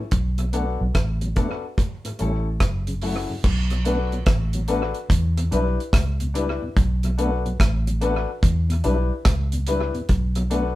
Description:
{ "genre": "roots reggae", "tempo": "72 BPM", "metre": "4/4", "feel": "swing 64% on 16ths", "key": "B minor", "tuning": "A4 = 440 Hz", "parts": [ { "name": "tonewheel organ", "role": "accompaniment", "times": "0.0-10.6 s", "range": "E2 to E4", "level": "-29 LUFS", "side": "left 1 dB", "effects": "chorus vibrato, slow rotary speaker" }, { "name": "vintage muted fingered electric bass", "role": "bass", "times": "0.1-10.8 s", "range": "F#1 to E2", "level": "-23 LUFS", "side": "equal", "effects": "none" }, { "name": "deep reggae drum kit", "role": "drums", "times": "0.1-10.8 s", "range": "crash cymbal, hi-hat, kick drum, rim click", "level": "-22 LUFS", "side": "equal", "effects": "analog delay" }, { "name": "clear baby grand piano", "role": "stabs", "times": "0.5-10.8 s", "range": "B3 to B4", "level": "-27 LUFS", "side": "left 5 dB", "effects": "none" } ], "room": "light reverb", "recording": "band playing live in one room", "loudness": "-20 LUFS", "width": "side -16 dB against mid", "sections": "0.0-3.4 A section; 3.4-10.8 B section", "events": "none", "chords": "0.1 Bm7; 1.8 A7; 2.6 F#m7; 3.4 Bm7; 5.1 Em7; 6.8 Bm7; 8.4 Em7; 10.1 Bm7" }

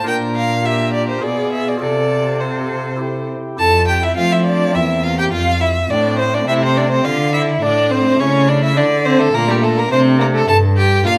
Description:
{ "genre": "classical, baroque-style sonata movement with continuo", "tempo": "104 BPM", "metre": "3/4", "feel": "straight", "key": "F major", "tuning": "A4 = 440 Hz", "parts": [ { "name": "warm violin", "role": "melody", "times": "0.0-11.1 s", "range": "G4 to A5", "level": "-20 LUFS", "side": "equal", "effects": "none" }, { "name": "rich violin", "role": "second line", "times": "0.0-11.1 s", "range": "G3 to Bb4", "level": "-22 LUFS", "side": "equal", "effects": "none" }, { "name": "pipe organ, flutes", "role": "accompaniment", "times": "0.0-11.2 s", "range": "E2 to Bb4", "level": "-25 LUFS", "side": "equal", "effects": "none" }, { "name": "warm cello", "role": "bass", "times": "0.0-11.2 s", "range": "E2 to F3", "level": "-21 LUFS", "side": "equal", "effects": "none" } ], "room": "moderate recital hall reverb, RT60 1.7 s", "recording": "close, detailed microphones", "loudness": "-16 LUFS", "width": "mono", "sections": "0.0-3.6 A section; 3.6-11.2 A section", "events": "none", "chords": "0.1 Gm/Bb; 1.2 Bdim7; 1.8 F/C; 3.0 C; 3.6 F; 4.7 C7/E; 5.3 F; 7.0 D5; 8.2 A/C#; 8.8 D5; 10.5 Gm" }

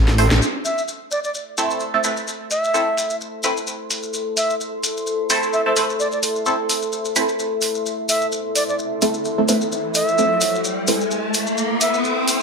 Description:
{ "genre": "bass house", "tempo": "129 BPM", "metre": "4/4", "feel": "swing 55% on 16ths", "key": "A minor", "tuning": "A4 = 440 Hz", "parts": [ { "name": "garage drum kit", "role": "drums", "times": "0.1-12.4 s", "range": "crash cymbal, hi-hat, snare drum", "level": "-23 LUFS", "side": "right 1 dB", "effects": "overdrive, low-pass filter on snare, low-pass filter on hats, low-pass filter on cymbals" }, { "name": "band-passed chord stab", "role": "stabs", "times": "0.2-10.9 s", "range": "A3 to C5", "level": "-22 LUFS", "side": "right 2 dB", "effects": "phaser, lush chorus, tape echo" }, { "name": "maracas", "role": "percussion", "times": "0.4-12.4 s", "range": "none", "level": "-26 LUFS", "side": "left 3 dB", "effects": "none" }, { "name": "deep dark ambient pad", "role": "texture", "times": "2.2-12.4 s", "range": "A4 to C6", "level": "-25 LUFS", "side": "left 1 dB", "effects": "chorus, built-in reverb" }, { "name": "breathy bright concert flute", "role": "melody", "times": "0.6-12.0 s", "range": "D5 to E5", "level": "-22 LUFS", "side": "right 1 dB", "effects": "tape echo" }, { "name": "riser", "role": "sound effects", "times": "9.2-12.4 s", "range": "none", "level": "-24 LUFS", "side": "equal", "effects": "none" } ], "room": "moderate digital room reverb, RT60 1.2 s", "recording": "none", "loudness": "-18 LUFS", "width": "side -4 dB against mid", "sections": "0.4-7.9 A section; 7.9-12.4 B section", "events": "drum fill 0.0-0.4; band accent 0.3; filter sweep on drum 0.4-7.9; build-up 7.9-12.4; filter sweep on synth stab 7.9-12.4; riser 9.2-12.4", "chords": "0.4 Am" }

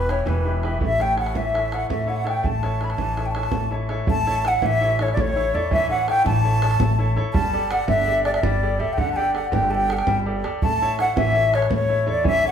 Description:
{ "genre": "celtic folk, Celtic slip jig", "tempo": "110 BPM (dotted quarters)", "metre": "9/8", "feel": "straight", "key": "A mixolydian", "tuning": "A4 = 439 Hz", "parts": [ { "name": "breathy bright wooden flute", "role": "melody", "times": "0.0-12.5 s", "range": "B4 to B5", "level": "-22 LUFS", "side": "equal", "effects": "none" }, { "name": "mellow baroque flute", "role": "second line", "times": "0.0-12.5 s", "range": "B4 to A5", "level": "-29 LUFS", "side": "left 4 dB", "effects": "none" }, { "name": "bright grand piano", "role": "accompaniment", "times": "0.0-12.5 s", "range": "B2 to D5", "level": "-28 LUFS", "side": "equal", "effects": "none" }, { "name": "upright bass", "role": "bass", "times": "0.0-12.5 s", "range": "E1 to E2", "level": "-25 LUFS", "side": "equal", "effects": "none" }, { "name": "bodhran", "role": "percussion", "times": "0.1-12.3 s", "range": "none", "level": "-27 LUFS", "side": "right 2 dB", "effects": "none" } ], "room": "wet large studio reverb, RT60 0.9 s", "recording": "band playing live in one room", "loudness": "-19 LUFS", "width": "side -8 dB against mid", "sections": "0.0-4.1 A section; 4.1-12.5 B section", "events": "none", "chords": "0.0 Em; 0.8 A; 7.3 Gsus2; 10.6 A" }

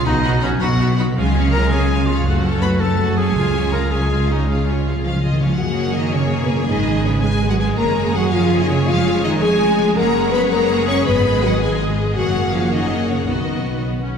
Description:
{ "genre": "cinematic", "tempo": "109 BPM (dotted quarters)", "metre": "6/8", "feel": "straight", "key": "Db mixolydian", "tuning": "A4 = 440 Hz", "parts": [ { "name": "warm studio violin section", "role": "melody", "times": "0.0-13.8 s", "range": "Bb4 to Db6", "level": "-27 LUFS", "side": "left 2 dB", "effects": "none" }, { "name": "clear clarinet", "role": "second line", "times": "0.0-5.0 s", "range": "Db4 to Cb5", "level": "-23 LUFS", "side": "right 1 dB", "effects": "none" }, { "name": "rich symphonic violin section", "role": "second line", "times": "0.0-14.2 s", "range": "A4 to Cb6", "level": "-29 LUFS", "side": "left 2 dB", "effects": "none" }, { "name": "concert harp", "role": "arpeggios", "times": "0.0-14.2 s", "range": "F2 to Cb6", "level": "-24 LUFS", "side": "left 4 dB", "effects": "none" }, { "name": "rich symphonic viola section", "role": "accompaniment", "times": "0.1-14.2 s", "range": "Ab3 to A4", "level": "-24 LUFS", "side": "right 2 dB", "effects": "none" }, { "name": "rich symphonic cello section", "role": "bass", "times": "0.1-13.8 s", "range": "Db2 to Db4", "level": "-22 LUFS", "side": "right 2 dB", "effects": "none" }, { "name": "rich symphonic double bass section", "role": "bass", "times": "0.1-14.2 s", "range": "F1 to Db2", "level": "-22 LUFS", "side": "right 2 dB", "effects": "none" }, { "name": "timpani", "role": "percussion", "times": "1.2-5.5, 11.1-11.6 s", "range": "Ab2 to Db3", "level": "-26 LUFS", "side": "equal", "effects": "none" }, { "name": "mellow French horn section", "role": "sustained chords", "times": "5.0-13.8 s", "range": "Bb3 to Db5", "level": "-21 LUFS", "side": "left 3 dB", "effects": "none" } ], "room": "wet scoring stage reverb, RT60 1.6 s", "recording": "heard from further back in the room", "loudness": "-15 LUFS", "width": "side -7 dB against mid", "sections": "0.0-5.6 A section; 5.6-14.2 B section", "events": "timpani fill 4.5-5.6", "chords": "0.1 Cb; 1.2 Db; 2.3 Gbm; 3.4 Db; 5.6 Gbadd9; 6.7 Abm; 7.8 Gbadd9; 8.9 Db/F; 10.0 Gbadd9; 11.1 Abm; 12.2 Gbadd9; 13.3 Cb" }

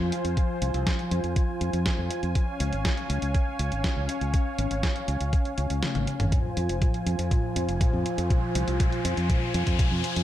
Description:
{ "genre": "italo disco", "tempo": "121 BPM", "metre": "4/4", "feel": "straight", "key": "F minor", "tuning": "A4 = 441 Hz", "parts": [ { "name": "warm analog pad", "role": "sustained chords", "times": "0.0-10.2 s", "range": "F3 to Ab5", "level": "-30 LUFS", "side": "equal", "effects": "chorus, vintage 12-bit sampler grit" }, { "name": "modern bright fingered electric bass", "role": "bass", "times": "0.0-10.2 s", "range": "F1 to F2", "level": "-29 LUFS", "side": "equal", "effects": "none" }, { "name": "clean 12-bit digital drum machine", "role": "drums", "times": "0.1-10.2 s", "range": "hi-hat, snare drum, toms", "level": "-32 LUFS", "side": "equal", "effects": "gated reverb" }, { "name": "electronic kick drum", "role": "drums", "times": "0.4-9.9 s", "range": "none", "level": "-24 LUFS", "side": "equal", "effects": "none" }, { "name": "riser", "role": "sound effects", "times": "7.4-10.2 s", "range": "none", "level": "-35 LUFS", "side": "left 4 dB", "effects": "none" } ], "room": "digital ambience", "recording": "none", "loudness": "-24 LUFS", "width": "side -12 dB against mid", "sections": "0.0-6.3 A section; 6.3-10.2 B section", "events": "kick drops out 5.8-6.3; drum fill 5.8-6.3, 6.3-10.2; riser 7.4-10.2", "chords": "0.0 Fm; 2.4 Db; 6.3 Fm" }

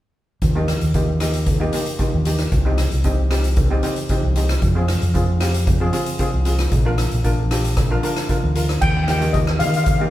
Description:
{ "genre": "calypso", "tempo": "114 BPM", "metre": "4/4", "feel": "straight", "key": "Eb major", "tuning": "A4 = 441 Hz", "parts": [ { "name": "fingered electric bass", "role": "bass", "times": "0.4-10.0 s", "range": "Bb1 to Eb3", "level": "-19 LUFS", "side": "equal", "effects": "none" }, { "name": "street-band drum kit", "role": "drums", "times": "0.4-10.0 s", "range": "crash cymbal, hi-hat, kick drum, rim click", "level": "-21 LUFS", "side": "equal", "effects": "none" }, { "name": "steel pan", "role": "accompaniment", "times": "0.6-10.1 s", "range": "Bb3 to Bb4", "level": "-25 LUFS", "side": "equal", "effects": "none" }, { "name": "steel pan", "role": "melody", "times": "8.8-10.1 s", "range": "Eb5 to G5", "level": "-22 LUFS", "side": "left 3 dB", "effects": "none" } ], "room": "light reverb", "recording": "band playing live in one room", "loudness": "-17 LUFS", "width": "side -14 dB against mid", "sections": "0.4-8.8 A section; 8.8-10.1 B section", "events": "none", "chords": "0.4 Eb; 2.5 Cm; 4.6 Fm; 6.7 Bb; 8.8 Eb" }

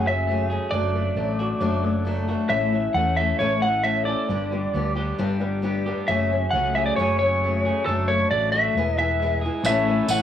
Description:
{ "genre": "folk rock and heartland rock", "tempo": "134 BPM", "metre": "4/4", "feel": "straight", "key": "A major", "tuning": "A4 = 439 Hz", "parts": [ { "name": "lightly driven lead guitar", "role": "melody", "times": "0.0-10.2 s", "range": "A4 to F#5", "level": "-23 LUFS", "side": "equal", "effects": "cassette tape" }, { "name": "picked old ladder-braced acoustic guitar", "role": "accompaniment", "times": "0.0-10.2 s", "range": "F#2 to A4", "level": "-26 LUFS", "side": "left 4 dB", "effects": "none" }, { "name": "electric guitar through a small old amp", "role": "riff", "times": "0.0-10.2 s", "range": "E2 to A4", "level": "-31 LUFS", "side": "right 1 dB", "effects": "none" }, { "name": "hollow-body short-scale fingered electric bass", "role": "bass", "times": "0.0-10.2 s", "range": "E1 to E2", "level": "-27 LUFS", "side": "equal", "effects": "none" }, { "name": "hand-pumped harmonium", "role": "sustained chords", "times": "9.6-10.2 s", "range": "A3 to A4", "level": "-29 LUFS", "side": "right 2 dB", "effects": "none" }, { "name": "tambourine", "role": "percussion", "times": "9.6-10.2 s", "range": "none", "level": "-29 LUFS", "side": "right 4 dB", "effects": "none" } ], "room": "light reverb, studio reverb", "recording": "home recording on cassette", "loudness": "-20 LUFS", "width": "side -10 dB against mid", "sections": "0.0-9.6 A section", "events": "none", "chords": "0.0 F#madd9; 0.7 D/F#; 2.5 A; 4.3 G; 6.1 F#madd9; 7.9 D/F#; 8.8 E; 9.6 A" }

